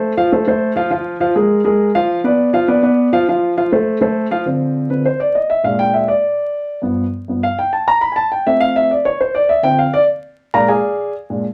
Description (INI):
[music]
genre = latin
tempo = 202 BPM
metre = 4/4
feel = straight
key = unclear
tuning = A4 = 439 Hz
[part]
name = dark grand piano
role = solo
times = 0.0-11.4 s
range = G2 to B5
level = -16 LUFS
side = equal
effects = none
[sound]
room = wet small room reverb, RT60 0.5 s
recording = vinyl crackle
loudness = -16 LUFS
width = mono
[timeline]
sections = 0.0-4.5 A section; 4.5-11.5 B section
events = grand piano solo 4.5-11.5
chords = 0.0 F; 0.9 Bb5; 2.1 Bdim/F; 3.3 F; 4.5 Dm7; 5.6 Bb7; 6.8 G7; 8.0 F; 9.2 Dm7; 10.4 Bb7